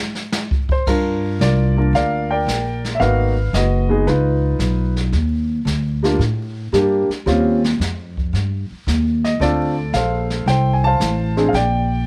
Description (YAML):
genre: jazz piano trio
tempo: 112 BPM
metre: 4/4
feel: swing 69% on 8ths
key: unclear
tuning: A4 = 441 Hz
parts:
  - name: jazz brush drum kit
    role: drums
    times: 0.1-12.1 s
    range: brushed snare drum, crash cymbal, hi-hat, kick drum, snare drum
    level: -27 LUFS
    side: equal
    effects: none
  - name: warm grand piano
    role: melody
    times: 0.7-12.1 s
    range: G3 to A5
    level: -21 LUFS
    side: equal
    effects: none
  - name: upright bass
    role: bass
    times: 0.9-12.1 s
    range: Gb1 to A2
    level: -21 LUFS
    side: equal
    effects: none
room: little or no reverb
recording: vinyl crackle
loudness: -18 LUFS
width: mono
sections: 0.9-12.1 A section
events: none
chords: 0.0 N.C.; 0.9 Gm7; 3.0 Abm7; 4.1 Db9; 5.1 Ebmaj7; 7.3 Ebadd9; 9.4 Dm7; 11.5 Bb